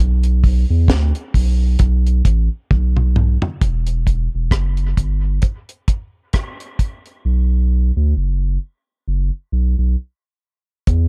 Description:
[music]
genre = dub reggae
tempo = 66 BPM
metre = 4/4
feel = swing 57% on 16ths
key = E minor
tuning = A4 = 440 Hz
[part]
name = warm sub bass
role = bass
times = 0.0-11.1 s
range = E1 to E2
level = -18 LUFS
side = equal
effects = none
[part]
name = deep reggae drum kit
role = drums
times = 0.2-11.1 s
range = hi-hat, kick drum, rim click, snare drum, toms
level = -19 LUFS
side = equal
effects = none
[sound]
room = little or no reverb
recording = none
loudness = -18 LUFS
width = mono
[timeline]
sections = 0.0-3.6 A section; 3.6-11.1 B section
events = drum fill 2.7-3.6; part muted 7.2-10.9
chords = none

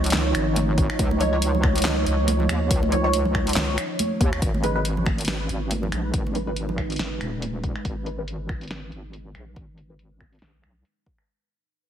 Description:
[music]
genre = deep dubstep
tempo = 140 BPM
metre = 4/4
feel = swing 56% on 16ths, half-time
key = G# dorian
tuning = A4 = 440 Hz
[part]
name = deep dark ambient pad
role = sustained chords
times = 0.0-11.2 s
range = E#3 to C#5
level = -29 LUFS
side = right 2 dB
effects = chorus, built-in reverb
[part]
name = wobble bass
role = bass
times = 0.0-10.8 s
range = D#1 to D#2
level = -26 LUFS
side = equal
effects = chorus
[part]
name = deep house drum kit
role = drums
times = 0.0-11.3 s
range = finger snaps, handclaps, hi-hat, snare drum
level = -28 LUFS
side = equal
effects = low-pass filter on hats, low-pass filter on snare, low-pass filter on room
[part]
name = congas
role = percussion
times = 0.6-7.5 s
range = none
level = -31 LUFS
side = right 2 dB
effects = none
[part]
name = electronic kick drum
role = drums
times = 0.8-11.2 s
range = none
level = -25 LUFS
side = equal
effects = none
[part]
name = filtered dub chord stab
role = stabs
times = 1.2-10.0 s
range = E#3 to C#5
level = -30 LUFS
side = equal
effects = phaser, lush chorus, dub echo
[sound]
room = moderate echo chamber reverb, RT60 1.7 s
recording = heavily compressed radio sound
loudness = -21 LUFS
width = side -9 dB against mid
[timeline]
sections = 0.0-4.4 A section; 4.4-11.3 B section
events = drop 0.0-4.4; fade-out 4.4-11.3; filter sweep on drum 4.4-11.3; filter sweep on wobble bass 4.4-11.3; filter sweep on synth stab 4.4-11.3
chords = 0.0 C#add9; 4.4 G#m

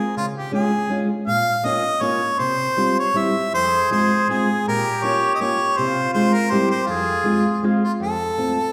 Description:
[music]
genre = alpine folk, alpine dance band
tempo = 161 BPM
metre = 3/4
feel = swing 54% on 8ths, rubato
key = F minor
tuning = A4 = 440 Hz
[part]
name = warm harmonica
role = melody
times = 0.0-8.7 s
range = F4 to F5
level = -23 LUFS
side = equal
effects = none
[part]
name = fingerpicked steel-string acoustic guitar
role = accompaniment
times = 0.2-8.6 s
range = F2 to F4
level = -24 LUFS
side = equal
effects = none
[part]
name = mellow trumpet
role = second line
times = 3.6-8.0 s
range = F4 to Ab4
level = -27 LUFS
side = equal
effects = none
[sound]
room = wet recital hall reverb, RT60 1.7 s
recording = recorded in a church or concert hall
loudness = -20 LUFS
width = mono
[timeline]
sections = 0.0-8.0 A section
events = none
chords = 0.2 Db; 1.3 Bbm; 2.4 Csus4; 3.2 C; 3.5 Fm; 4.7 Bbm; 5.8 Fm/C; 6.5 C; 6.9 Fm; 8.0 F

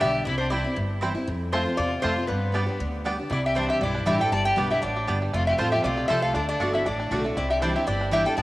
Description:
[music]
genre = bluegrass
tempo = 236 BPM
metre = 4/4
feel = swing 53% on 8ths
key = unclear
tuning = A4 = 439 Hz
[part]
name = bluegrass banjo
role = melody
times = 0.0-8.4 s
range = G3 to G4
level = -34 LUFS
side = right 2 dB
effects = cassette tape
[part]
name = lap resonator guitar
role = melody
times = 0.0-8.4 s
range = B4 to A5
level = -27 LUFS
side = left 1 dB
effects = cassette tape
[part]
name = bright fiddle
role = second line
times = 0.0-8.4 s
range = B3 to D5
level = -31 LUFS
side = left 1 dB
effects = cassette tape
[part]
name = picked steel-string acoustic guitar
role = accompaniment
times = 0.0-8.4 s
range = F2 to G4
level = -29 LUFS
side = equal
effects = cassette tape
[part]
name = mandolin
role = stabs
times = 0.0-8.2 s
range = A3 to A5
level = -33 LUFS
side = right 3 dB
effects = cassette tape
[part]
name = upright bass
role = bass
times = 0.0-8.4 s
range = F1 to G2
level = -30 LUFS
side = equal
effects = none
[sound]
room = moderate lush hall reverb, RT60 2.7 s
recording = home recording on cassette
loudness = -22 LUFS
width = side -18 dB against mid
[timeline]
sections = 0.0-3.3 A section; 3.3-8.4 B section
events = none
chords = 0.3 C; 1.3 F; 2.3 G; 3.3 Cadd9; 4.3 G; 5.3 F; 6.4 D; 7.4 Cadd9

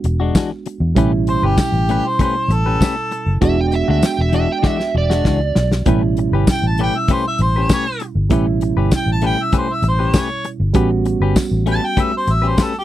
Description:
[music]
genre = straight-eighth soul blues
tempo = 98 BPM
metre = 4/4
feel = straight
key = A mixolydian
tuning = A4 = 441 Hz
[part]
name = bright reed electric piano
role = accompaniment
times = 0.0-12.8 s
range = B2 to F#4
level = -22 LUFS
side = right 6 dB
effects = none
[part]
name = clean electric guitar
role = stabs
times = 0.0-12.8 s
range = E3 to B4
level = -22 LUFS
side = left 7 dB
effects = none
[part]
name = vintage muted fingered electric bass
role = bass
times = 0.0-12.5 s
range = E1 to E2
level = -17 LUFS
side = equal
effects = none
[part]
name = warm soul drum kit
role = drums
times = 0.0-12.7 s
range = hi-hat, kick drum, snare drum, tambourine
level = -16 LUFS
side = equal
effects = none
[part]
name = warm harmonica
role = melody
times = 1.3-12.8 s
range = G4 to A5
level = -20 LUFS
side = left 1 dB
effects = overdrive
[part]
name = overdriven slide guitar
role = second line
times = 3.5-5.7 s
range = D5 to G5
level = -22 LUFS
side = right 5 dB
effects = tape echo
[sound]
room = little or no reverb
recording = dry, close 1970s-style studio recording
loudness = -14 LUFS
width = side -13 dB against mid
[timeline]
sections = 0.0-5.9 A section; 5.9-12.8 B section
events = drum fill 4.6-5.9; harmonica solo 5.9-12.8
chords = 0.0 E9; 1.0 A9; 3.4 E9; 5.9 A9

